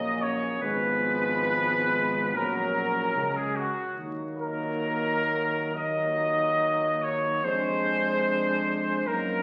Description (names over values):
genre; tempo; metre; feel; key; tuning
classical, hymn-like piece for brass band; 62-76 BPM; 4/4; rubato; unclear; A4 = 440 Hz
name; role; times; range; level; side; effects
mellow trumpet section; melody; 0.0-9.4 s; F#4 to D#5; -28 LUFS; equal; none
mellow French horn section; second line; 0.0-9.4 s; Cb4 to D#4; -38 LUFS; equal; none
bright trombone; accompaniment; 0.0-9.4 s; F3 to Ab3; -39 LUFS; equal; none
warm euphonium; accompaniment; 0.0-9.4 s; F#3 to A#3; -38 LUFS; equal; none
dark tuba; bass; 0.0-9.4 s; Ab1 to F#2; -39 LUFS; equal; none
room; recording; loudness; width
wet scoring stage reverb, RT60 1.8 s; very old 78 rpm record, vinyl crackle; -27 LUFS; mono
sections
0.0-9.4 A section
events
none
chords
0.0 F#; 0.6 Fdim/Ab; 2.3 F#/A#; 4.0 D#m; 7.4 Ddim/F